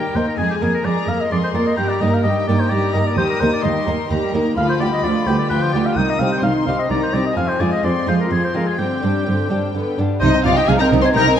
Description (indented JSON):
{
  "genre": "classical, baroque-style concerto movement with solo episodes",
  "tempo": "129 BPM",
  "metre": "3/4",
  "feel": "straight",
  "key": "Eb major, C minor from 4.6 s",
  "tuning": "A4 = 440 Hz",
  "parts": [
    { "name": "rich chamber violin section", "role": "melody", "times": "0.0-11.4 s", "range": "Eb5 to Eb6", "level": "-27 LUFS", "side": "left 6 dB", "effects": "none" },
    { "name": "warm oboe", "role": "melody", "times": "0.0-11.3 s", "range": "G4 to Ab5", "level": "-23 LUFS", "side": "left 1 dB", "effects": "none" },
    { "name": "warm studio violin section", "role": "second line", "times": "0.0-11.4 s", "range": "B3 to C5", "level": "-23 LUFS", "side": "left 3 dB", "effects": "none" },
    { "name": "dark chamber viola section", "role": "accompaniment", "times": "0.0-11.4 s", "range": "D3 to Eb4", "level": "-24 LUFS", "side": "right 1 dB", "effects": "none" },
    { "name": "lute", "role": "accompaniment", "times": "0.0-11.4 s", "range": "D2 to Ab4", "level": "-25 LUFS", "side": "left 1 dB", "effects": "none" },
    { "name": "warm studio cello section", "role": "bass", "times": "0.1-11.2 s", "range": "C2 to C3", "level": "-21 LUFS", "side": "right 3 dB", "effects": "none" },
    { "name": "rich chamber double bass section", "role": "bass", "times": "10.2-11.2 s", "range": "C2", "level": "-21 LUFS", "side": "right 3 dB", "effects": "none" }
  ],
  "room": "moderate concert hall reverb, RT60 2.4 s",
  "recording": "dark, warm production",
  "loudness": "-16 LUFS",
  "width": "side -9 dB against mid",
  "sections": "0.0-10.2 A section; 10.2-11.4 B section",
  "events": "none",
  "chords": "0.4 Bb5/F; 1.8 Eb/G; 3.2 Eb; 4.6 G7/D; 6.0 Cm; 7.4 Fm; 8.8 Gsus4; 9.7 G; 10.2 Cm"
}